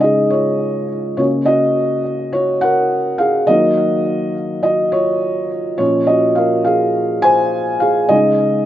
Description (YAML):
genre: pop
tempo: 104 BPM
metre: 4/4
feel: straight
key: unclear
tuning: A4 = 440 Hz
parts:
  - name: felt-muted upright piano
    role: solo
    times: 0.0-8.7 s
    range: Bb2 to Ab5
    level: -13 LUFS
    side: equal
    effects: digital delay
room: moderate plate reverb, RT60 3.7 s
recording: rough home demo mix, nothing above 7.6 kHz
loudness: -13 LUFS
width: side -12 dB against mid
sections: 0.0-8.7 A section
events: felt piano solo 0.0-8.7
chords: 0.0 Dbsus2; 1.2 Gb/Db; 3.5 Ebm; 5.8 Bbm; 8.1 Dbsus2